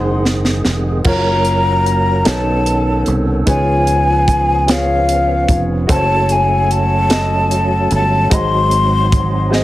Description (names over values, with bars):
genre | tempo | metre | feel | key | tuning
slow gospel | 50 BPM (dotted quarters) | 6/8 | straight | unclear | A4 = 439 Hz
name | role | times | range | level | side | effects
breathy mellow jazz flute | melody | 0.0-9.5 s | F5 to C6 | -16 LUFS | left 2 dB | slapback echo
warm grand piano | accompaniment | 0.0-9.6 s | Ab2 to Gb5 | -20 LUFS | equal | none
percussive tonewheel organ | sustained chords | 0.0-9.6 s | Eb3 to Bb4 | -22 LUFS | right 3 dB | overdrive, chorus vibrato, fast rotary speaker
fingered electric bass | bass | 0.0-9.6 s | F1 to Db2 | -17 LUFS | equal | none
crisp fusion drum kit | drums | 0.3-9.6 s | crash cymbal, hi-hat, kick drum, snare drum | -18 LUFS | right 1 dB | none
room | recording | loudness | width
light reverb, small room ambience | heavily compressed radio sound | -12 LUFS | side -15 dB against mid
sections
0.0-1.1 A section; 1.1-9.6 B section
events
drum fill 0.0-1.1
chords
0.0 Ab; 1.1 Gbmaj7; 2.3 Cb9; 3.5 Db7; 5.9 Gbm; 8.3 Ab7